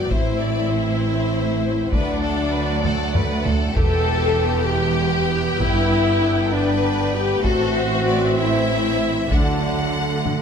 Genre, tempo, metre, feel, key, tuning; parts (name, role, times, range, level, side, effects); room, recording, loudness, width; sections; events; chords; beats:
cinematic, epic orchestral film score; 65 BPM (dotted quarters); 6/8; straight; A4 = 439 Hz
bright symphonic violin section; melody; 0.0-10.4 s; G4 to F#5; -29 LUFS; left 4 dB
dark symphonic violin section; second line; 0.0-10.4 s; A4 to G5; -28 LUFS; left 3 dB
rich studio viola section; accompaniment; 0.0-10.2 s; F#3 to A4; -27 LUFS; right 2 dB
bright trombone section; sustained chords; 0.0-10.4 s; D3 to C4; -29 LUFS; right 5 dB
clear French horn section; sustained chords; 0.0-10.2 s; A3 to A4; -24 LUFS; left 7 dB
warm studio cello section; bass; 0.0-10.4 s; D2 to D3; -26 LUFS; right 4 dB
warm symphonic double bass section; bass; 0.0-10.4 s; E1 to D2; -26 LUFS; right 4 dB
taiko ensemble; drums; 0.1-10.4 s; -23 LUFS; equal
timpani; percussion; 3.8-4.6 s; E2; -28 LUFS; right 1 dB
light reverb; close, detailed microphones; -17 LUFS; side -7 dB against mid
0.0-10.4 A section
drum fill 2.8-3.8, 10.2
0.1 Am; 1.9 D; 3.8 Em; 5.6 G; 7.4 Am; 9.3 D
| 0.11 1.02 | 1.93 2.84 | 3.76 4.68 | 5.59 6.51 | 7.43 8.37 | 9.31 10.25